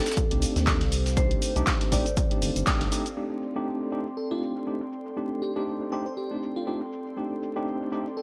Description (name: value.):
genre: deep house.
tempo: 120 BPM.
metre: 4/4.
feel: swing 56% on 16ths.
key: C dorian.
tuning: A4 = 439 Hz.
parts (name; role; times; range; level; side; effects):
marimba with medium hard mallets; melody; 0.0-2.3 s; A4 to D5; -37 LUFS; equal; analog delay.
airy breathy pad; sustained chords; 0.1-8.2 s; A4 to C6; -43 LUFS; equal; chorus, sidechain pumping.
tine electric piano; stabs; 0.0-8.1 s; A3 to G4; -33 LUFS; equal; overdrive, sidechain pumping, low-pass filter, analog delay.
warbly tape-like pad; texture; 0.1-8.2 s; C4 to C5; -40 LUFS; equal; none.
breakbeat sampler-style drum kit; drums; 0.1-8.2 s; hi-hat, shaker, snare drum; -40 LUFS; equal; sidechain pumping on perc, high-pass filter on perc, low-pass filter on perc, small room ambience, high-pass filter on snare, low-pass filter on snare, sidechain pumping on hats, high-pass filter on hats, low-pass filter on hats.
punchy analog drum machine; drums; 0.1-8.2 s; crash cymbal, handclaps, hi-hat, shaker; -33 LUFS; equal; low-pass filter on hats, small room ambience, low-pass filter on perc, low-pass filter on snare, low-pass filter on cymbals.
electronic kick drum; drums; 0.2-2.8 s; none; -29 LUFS; equal; small room ambience.
rubbery square bass; bass; 0.3-2.9 s; G1 to Eb2; -29 LUFS; equal; sidechain pumping.
bell-like FM electric piano; melody; 4.2-8.2 s; F4 to C5; -37 LUFS; equal; chorus, tremolo, analog delay.
room: light reverb.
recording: dry, gritty hardware recording, vinyl crackle.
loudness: -28 LUFS.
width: mono.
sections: 0.0-3.2 A section; 3.2-8.2 B section.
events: band accent 2.7; filter sweep on analog synth pad 3.2-8.2.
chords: 0.0 Cm69.